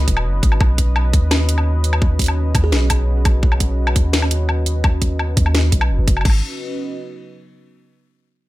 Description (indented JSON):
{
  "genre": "half-time drum and bass",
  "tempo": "170 BPM",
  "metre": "4/4",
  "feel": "half-time",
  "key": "G# minor",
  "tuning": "A4 = 440 Hz",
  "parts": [
    { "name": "dark analog pad", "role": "sustained chords", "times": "0.0-7.6 s", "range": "C#4 to D#5", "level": "-28 LUFS", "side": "equal", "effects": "chorus, sidechain pumping" },
    { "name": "long sustained 808-style bass", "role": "bass", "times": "0.0-6.4 s", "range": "D#1 to D#2", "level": "-17 LUFS", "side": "equal", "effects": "none" },
    { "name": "drum and bass drum kit", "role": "drums", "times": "0.1-6.3 s", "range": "crash cymbal, hi-hat, snare drum, woodblock", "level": "-22 LUFS", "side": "left 1 dB", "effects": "overdrive, small room reverb" },
    { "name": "electronic kick drum", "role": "drums", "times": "0.1-6.3 s", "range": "none", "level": "-17 LUFS", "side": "equal", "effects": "overdrive, small room reverb" },
    { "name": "buzzing kalimba", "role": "melody", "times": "2.6-2.9 s", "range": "G#4", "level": "-31 LUFS", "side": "right 4 dB", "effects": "vintage 12-bit sampler grit, dub echo" }
  ],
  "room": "little or no reverb",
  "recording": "none",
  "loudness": "-15 LUFS",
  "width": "side -17 dB against mid",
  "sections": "0.0-6.3 A section; 6.3-7.7 B section",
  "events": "drop 0.0-6.3",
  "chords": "0.0 G#m; 0.6 B; 6.3 G#m (rootless)"
}